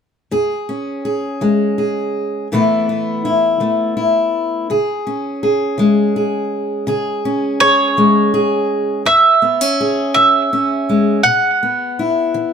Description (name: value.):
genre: folk.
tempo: 55 BPM (dotted quarters).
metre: 6/8.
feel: straight.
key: E major.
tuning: A4 = 440 Hz.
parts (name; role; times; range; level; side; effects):
fingerpicked steel-string acoustic guitar; accompaniment; 0.3-12.5 s; E2 to G#4; -16 LUFS; left 1 dB; none.
bowl-back mandolin; melody; 7.6-12.0 s; C#5 to F#5; -13 LUFS; right 2 dB; analog delay.
room: moderate echo chamber reverb, RT60 1.4 s.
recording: none.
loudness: -13 LUFS.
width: side -7 dB against mid.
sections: 0.3-9.1 A section; 9.1-12.5 B section.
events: none.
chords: 0.3 E6; 2.5 B7sus4; 4.7 C#m; 9.1 E6; 11.2 Bsus4.